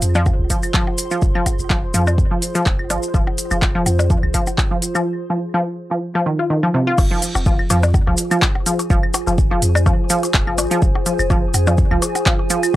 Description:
minimal techno; 125 BPM; 4/4; swing 54% on 16ths; F minor; A4 = 441 Hz
punchy sub bass; bass; 0.0-12.0 s; F1 to F2; -20 LUFS; equal; sidechain pumping
minimal click drum kit; drums; 0.0-12.7 s; crash cymbal, handclaps, hi-hat; -22 LUFS; right 1 dB
maracas; percussion; 0.0-12.7 s; -27 LUFS; left 2 dB
warbly tape-like pad; texture; 0.0-12.8 s; F4 to C6; -26 LUFS; right 1 dB; chorus, built-in reverb, phaser, sidechain pumping
resonant blip pluck; riff; 0.2-12.6 s; C3 to F4; -21 LUFS; equal; chorus, sidechain pumping, analog delay
percussion blips and claves; percussion; 0.2-12.7 s; -24 LUFS; left 2 dB; overdrive, analog delay
electronic kick drum; drums; 0.3-12.4 s; -18 LUFS; equal
light reverb; dry, gritty hardware recording; -15 LUFS; side -15 dB against mid
0.0-7.0 A section; 7.0-12.8 B section
drop 7.0-12.8
0.0 Fm
0.26 0.74 | 1.22 1.70 2.18 2.66 | 3.14 3.62 4.10 4.58 | 5.06 5.54 6.02 6.50 | 6.98 7.46 7.94 8.42 | 8.90 9.38 9.86 10.34 | 10.82 11.30 11.78 12.26 | 12.74

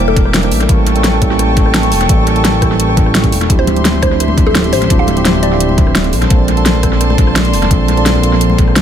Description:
liquid drum and bass; 171 BPM; 4/4; straight; D minor; A4 = 440 Hz
mallet-like synth pluck; melody; 0.0-0.4, 3.6-5.7 s; A4 to F5; -20 LUFS; left 2 dB; chorus, phaser, analog delay
mellow tine electric piano; accompaniment; 0.0-8.8 s; F3 to Bb4; -16 LUFS; right 1 dB; slow stereo tremolo, dub echo
dark chamber string section; sustained chords; 0.0-8.8 s; Bb3 to D6; -19 LUFS; right 2 dB; sidechain pumping
smooth synth bass; bass; 0.0-8.8 s; D1 to C2; -15 LUFS; equal
electronic kick drum; drums; 0.2-8.7 s; -12 LUFS; equal; overdrive
pop drum kit; drums; 0.2-8.8 s; hi-hat, rim click, snare drum; -16 LUFS; equal; overdrive, dub echo
congas; percussion; 3.7-8.8 s; -22 LUFS; left 6 dB; dub echo
light reverb, digital ambience; echo-heavy mix; -9 LUFS; side -9 dB against mid
0.0-8.8 A section
0.0 Em7b5; 0.7 A7b9; 3.5 Dm11; 6.1 Bbmaj9
0.34 | 0.69 1.04 1.39 1.74 | 2.09 2.44 2.80 3.15 | 3.50 3.85 4.20 4.55 | 4.90 5.25 5.60 5.95 | 6.30 6.66 7.01 7.36 | 7.71 8.06 8.41 8.76

